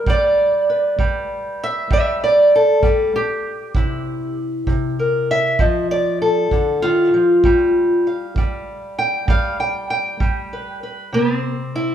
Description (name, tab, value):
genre	acoustic country blues, solo or duo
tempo	65 BPM (dotted quarters)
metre	12/8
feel	straight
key	unclear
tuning	A4 = 439 Hz
part	fingerpicked steel-string acoustic guitar	melody	0.0-11.9 s	C3 to G5	-16 LUFS	equal	none
part	kick drum	drums	0.1-10.3 s	none	-20 LUFS	right 2 dB	none
room	wet large studio reverb, RT60 1.4 s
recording	band playing live in one room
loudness	-16 LUFS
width	side -10 dB against mid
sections	0.0-11.1 A section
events	steel-string acoustic guitar solo 0.0-11.1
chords	0.0 G; 3.8 C7; 5.6 F7; 7.4 G7(no3); 11.1 C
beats	| 0.07 0.99 1.91 2.83 | 3.75 4.67 5.59 6.52 | 7.44 8.36 9.28 10.21 | 11.13